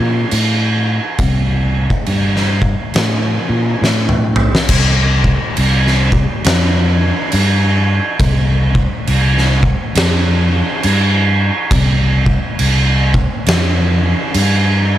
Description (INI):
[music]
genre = stoner and doom metal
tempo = 68 BPM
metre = 4/4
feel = swing 63% on 8ths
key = unclear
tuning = A4 = 440 Hz
[part]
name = fingered electric bass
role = bass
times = 0.0-15.0 s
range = C2 to Bb2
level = -14 LUFS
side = equal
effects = overdrive
[part]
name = oversized low-tuned drum kit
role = drums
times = 0.3-14.6 s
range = crash cymbal, kick drum, snare drum, toms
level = -15 LUFS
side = equal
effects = none
[sound]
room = little or no reverb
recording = none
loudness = -12 LUFS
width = side -12 dB against mid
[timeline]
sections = 0.0-4.7 A section; 4.7-15.0 B section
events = drum fill 3.8-4.7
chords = none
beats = 0.31 | 1.19 2.06 2.94 3.81 | 4.69 5.57 6.45 7.32 | 8.20 9.07 9.95 10.83 | 11.71 12.59 13.47 14.35